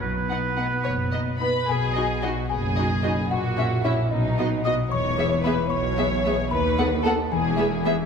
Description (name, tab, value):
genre	cinematic, playful, whimsical film cue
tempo	74 BPM (dotted quarters)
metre	6/8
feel	straight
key	B major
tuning	A4 = 440 Hz
part	clear oboe	second line	0.0-1.4 s	B4	-30 LUFS	right 5 dB	none
part	concert harp	arpeggios	0.0-8.1 s	A#2 to G#5	-29 LUFS	left 6 dB	none
part	muted studio cello section	bass	0.0-8.0 s	D#2 to B3	-30 LUFS	right 2 dB	none
part	muted symphonic double bass section	bass	0.0-8.0 s	E1 to D#2	-29 LUFS	right 2 dB	none
part	muted studio violin section	melody	0.3-7.9 s	C#5 to B5	-32 LUFS	left 4 dB	none
part	muted studio violin section	second line	0.3-7.8 s	D#4 to D#5	-27 LUFS	left 1 dB	none
part	muted studio viola section	accompaniment	0.3-7.9 s	B3 to A4	-30 LUFS	right 2 dB	none
part	small celesta	melody	1.4-7.8 s	D#5 to D#6	-32 LUFS	left 4 dB	none
room	wet concert hall reverb, RT60 2.0 s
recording	minimal, uncompressed stereo recording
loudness	-21 LUFS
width	side -6 dB against mid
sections	0.0-1.7 A section; 1.7-8.1 B section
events	none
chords	0.0 B; 3.3 F#7/A#; 4.1 B; 4.9 E; 6.5 B7/D#; 7.3 E